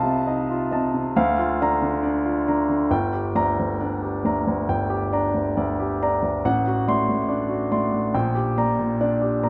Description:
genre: classical, romantic character piece for solo piano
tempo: 65-71 BPM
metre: 4/4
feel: rubato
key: unclear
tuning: A4 = 441 Hz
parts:
  - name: warm grand piano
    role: solo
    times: 0.0-9.5 s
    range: G1 to C6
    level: -23 LUFS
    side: equal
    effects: none
room: wet recital hall reverb, RT60 1.4 s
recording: none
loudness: -23 LUFS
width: mono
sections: 0.0-9.5 A section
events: none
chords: 0.0 F7/C; 1.1 Bb/D; 2.9 Gm; 6.4 D7/A; 8.1 Gm/Bb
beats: 0.24 1.14 2.02 | 2.91 3.81 4.70 5.58 | 6.44 7.29 8.14 8.99

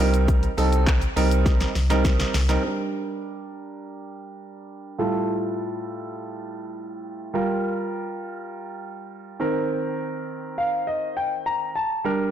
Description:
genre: dance-pop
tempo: 102 BPM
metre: 4/4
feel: straight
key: unclear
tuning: A4 = 440 Hz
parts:
  - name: warm concert grand piano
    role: accompaniment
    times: 0.0-12.3 s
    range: A2 to Bb5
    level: -25 LUFS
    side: right 2 dB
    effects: sidechain pumping, low-pass filter
  - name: sub bass with octave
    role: bass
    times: 0.0-2.6 s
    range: C2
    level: -22 LUFS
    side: left 1 dB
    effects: sidechain pumping
  - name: house drum kit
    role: drums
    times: 0.1-2.6 s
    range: handclaps, hi-hat, kick drum, shaker, snare drum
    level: -24 LUFS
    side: left 1 dB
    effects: none
room: light reverb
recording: blown-out, overdriven recording, overdrive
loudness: -22 LUFS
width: side -10 dB against mid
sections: 0.0-2.6 A section; 2.6-12.3 B section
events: drop 0.0-2.6; drum fill 1.5-2.6; grand piano fill 10.3-12.0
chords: 0.0 Cm7; 2.6 Bb6; 5.0 Fadd9/A; 7.3 Gm7; 9.4 Cm7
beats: | 0.28 0.87 1.46 2.05 | 2.64 3.22 3.81 4.40 | 4.99 5.58 6.17 6.75 | 7.34 7.93 8.52 9.11 | 9.70 10.28 10.87 11.46 | 12.05

